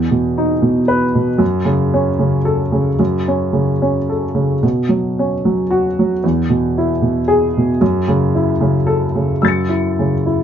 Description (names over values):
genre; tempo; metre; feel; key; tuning
neoclassical minimalist piano; 113 BPM; 3/4; rubato; unclear; A4 = 440 Hz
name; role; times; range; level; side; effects
dark baby grand piano; solo; 0.0-10.4 s; E2 to C#7; -14 LUFS; equal; none
room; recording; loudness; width
light reverb; nothing above 7.4 kHz; -14 LUFS; side -9 dB against mid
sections
0.0-10.4 A section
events
none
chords
0.0 E5; 1.4 F#m; 4.6 Bsus2; 6.2 E; 7.8 F#m7